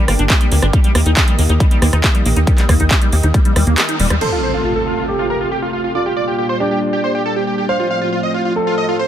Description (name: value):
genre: uplifting trance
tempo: 138 BPM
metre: 4/4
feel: straight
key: unclear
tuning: A4 = 444 Hz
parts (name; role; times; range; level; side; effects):
- lush unison pad; sustained chords; 0.0-9.1 s; A2 to Eb5; -22 LUFS; equal; chorus, vintage 12-bit sampler grit, sidechain pumping
- liquid acid bass; arpeggios; 0.0-4.2 s; G3 to G4; -23 LUFS; left 1 dB; lush chorus, sidechain pumping, dub echo
- tight sequencer bass; bass; 0.1-4.2 s; Eb1 to Eb2; -14 LUFS; equal; sidechain pumping
- big-room dance drum kit; drums; 0.1-4.3 s; crash cymbal, handclaps, hi-hat, rim click; -20 LUFS; right 1 dB; none
- electronic kick drum; drums; 0.3-3.4 s; none; -13 LUFS; equal; none
- big supersaw lead; melody; 4.2-9.1 s; F4 to F5; -19 LUFS; right 1 dB; sidechain pumping, low-pass filter, dub echo
- dark baby grand piano; second line; 4.2-9.0 s; D4 to C5; -20 LUFS; right 2 dB; vintage 12-bit sampler grit, ping-pong delay
- impact; sound effects; 4.2-6.0 s; none; -26 LUFS; equal; none
room: light reverb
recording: none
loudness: -13 LUFS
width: side -10 dB against mid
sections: 0.0-4.2 A section; 4.2-9.1 B section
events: kick drops out 3.8-4.2; band accent 3.8; impact 4.2-6.0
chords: 0.0 Gm; 0.7 Eb; 4.2 F; 6.0 Gm; 7.7 F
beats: 0.30 | 0.73 1.17 1.60 2.04 | 2.47 2.91 3.34 3.78 | 4.21 4.65 5.08 5.52 | 5.95 6.39 6.82 7.26 | 7.69 8.12 8.56 8.99